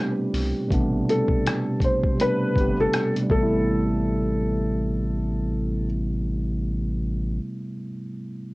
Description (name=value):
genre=lo-fi hip hop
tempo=81 BPM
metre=4/4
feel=swing 61% on 16ths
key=A minor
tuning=A4 = 440 Hz
part: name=mellow tine electric piano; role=accompaniment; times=0.0-8.5 s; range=B2 to G4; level=-25 LUFS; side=right 1 dB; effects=cassette tape
part: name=round analog bass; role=bass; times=0.3-7.4 s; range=G1 to C2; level=-27 LUFS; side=equal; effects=none
part: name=lo-fi sampler-style drum kit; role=drums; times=0.3-3.5 s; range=hi-hat, kick drum, rim click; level=-25 LUFS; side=equal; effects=cassette tape
part: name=felt-muted upright piano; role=melody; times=1.1-5.9 s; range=A4 to C5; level=-26 LUFS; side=left 1 dB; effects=cassette tape
room=moderate booth ambience, RT60 0.2 s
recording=home recording on cassette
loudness=-21 LUFS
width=side -21 dB against mid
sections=0.0-3.7 A section; 3.7-6.6 B section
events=none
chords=0.0 Am9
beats=| 0.71 1.45 2.19 2.93 | 3.67 4.41 5.15 5.89